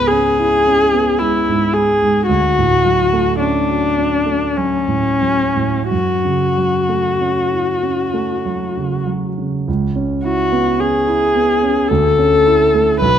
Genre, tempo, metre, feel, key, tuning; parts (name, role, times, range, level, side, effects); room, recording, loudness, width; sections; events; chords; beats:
classical, impressionist duo for viola and grand piano; 44-55 BPM; 3/4; rubato; A4 = 438 Hz
warm viola; melody; 0.0-13.2 s; C#4 to B4; -15 LUFS; left 2 dB
warm grand piano; accompaniment; 0.0-13.2 s; B1 to F#4; -18 LUFS; right 3 dB
moderate concert hall reverb, RT60 2.0 s; close, detailed microphones; -13 LUFS; side -9 dB against mid
0.0-9.7 A section; 9.7-13.2 B section
0.0 C#m7; 2.3 Dmaj7; 5.9 F#m7; 9.7 C#m7; 11.9 Dsus2
0.09 1.20 | 2.29 3.41 4.59 | 5.92 7.22 8.47 | 9.68 10.79 11.90 | 13.01